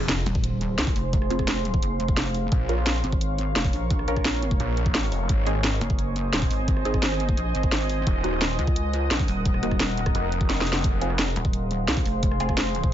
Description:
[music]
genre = dark technical drum and bass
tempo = 173 BPM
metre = 4/4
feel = straight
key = F phrygian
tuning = A4 = 441 Hz
[part]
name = deep dark ambient pad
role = sustained chords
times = 0.3-12.9 s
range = Ab4 to Eb6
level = -31 LUFS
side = right 1 dB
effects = chorus, built-in reverb, sidechain pumping
[part]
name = filtered dub chord stab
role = stabs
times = 0.0-12.9 s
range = Bb3 to Bb4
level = -32 LUFS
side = equal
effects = phaser, ping-pong delay
[part]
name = snarling distorted saw bass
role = bass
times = 0.0-0.2, 2.5-5.8, 8.1-11.3 s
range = Eb1 to Bb1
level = -26 LUFS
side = equal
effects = distortion, tube saturation, sidechain pumping
[part]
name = drum and bass drum kit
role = drums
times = 0.0-12.8 s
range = hi-hat, rim click, snare drum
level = -27 LUFS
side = equal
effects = overdrive
[part]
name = impact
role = sound effects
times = 0.0-1.1 s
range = none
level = -36 LUFS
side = equal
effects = none
[part]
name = pulsing pluck wobble bass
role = bass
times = 0.3-12.9 s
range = Eb1 to Db2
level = -27 LUFS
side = equal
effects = chorus
[part]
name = electronic kick drum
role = drums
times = 0.4-12.9 s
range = none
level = -24 LUFS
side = equal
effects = overdrive
[sound]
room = digital ambience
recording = nothing above 7.7 kHz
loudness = -22 LUFS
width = side -11 dB against mid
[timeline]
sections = 0.0-12.9 A section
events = impact 0.0-1.1; drum fill 10.5-10.8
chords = 0.0 Fm; 2.5 Bbm; 5.3 Ab; 8.1 Ebm; 10.8 Fm

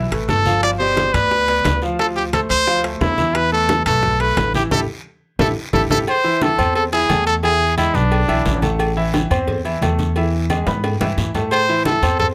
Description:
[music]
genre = latin, salsa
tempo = 176 BPM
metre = 4/4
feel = straight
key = A minor, A harmonic minor from 6.1 s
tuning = A4 = 440 Hz
[part]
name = clear concert grand piano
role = accompaniment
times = 0.0-12.3 s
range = B2 to C6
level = -26 LUFS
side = equal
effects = none
[part]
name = upright bass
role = bass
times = 0.0-12.3 s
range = G1 to A2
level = -24 LUFS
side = equal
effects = none
[part]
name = bongos and cowbell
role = percussion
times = 0.1-12.3 s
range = none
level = -32 LUFS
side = equal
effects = none
[part]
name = congas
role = percussion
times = 0.1-12.3 s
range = none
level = -27 LUFS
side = equal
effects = none
[part]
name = timbales and agogo bells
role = percussion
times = 0.1-12.2 s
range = none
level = -28 LUFS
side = equal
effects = none
[part]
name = bright trumpet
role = melody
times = 0.3-8.6, 11.5-12.3 s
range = D4 to D5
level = -20 LUFS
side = equal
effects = none
[part]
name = guiro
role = percussion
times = 0.3-12.3 s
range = none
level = -38 LUFS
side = equal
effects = none
[sound]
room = little or no reverb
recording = close, detailed microphones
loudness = -18 LUFS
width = mono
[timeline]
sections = 0.0-6.1 A section; 6.1-12.3 B section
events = drum fill 4.7-6.1, 10.5-11.5; band accent 4.7-6.1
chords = 0.0 Esus4; 0.6 G7; 2.0 Dm9; 3.4 Esus4; 4.7 A5; 6.1 Am; 7.4 E7; 8.8 Am; 10.2 E; 11.5 Am

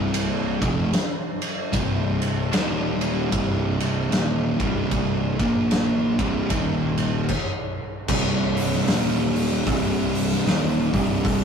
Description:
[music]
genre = stoner and doom metal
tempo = 76 BPM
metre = 4/4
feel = swing 60% on 8ths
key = C minor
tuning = A4 = 440 Hz
[part]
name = fuzz guitar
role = riff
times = 0.0-11.4 s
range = C2 to Bb3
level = -22 LUFS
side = right 1 dB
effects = distortion
[part]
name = fuzz fingered electric bass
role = bass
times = 0.0-11.4 s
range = C1 to Bb1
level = -30 LUFS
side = equal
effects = overdrive
[part]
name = oversized low-tuned drum kit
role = drums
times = 0.1-11.4 s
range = crash cymbal, hi-hat, kick drum, ride cymbal, snare drum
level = -25 LUFS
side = left 1 dB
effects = none
[sound]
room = light reverb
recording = rough rehearsal-room recording, warm saturation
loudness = -20 LUFS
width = side -6 dB against mid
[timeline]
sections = 0.0-8.1 A section; 8.1-11.4 B section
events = stop 7.3-8.1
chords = 0.0 C5; 2.5 Eb5; 3.3 Cm; 5.3 Bb5; 6.1 C5; 6.5 Eb5; 7.3 N.C.; 8.1 C5; 8.9 Eb5; 9.7 Cm

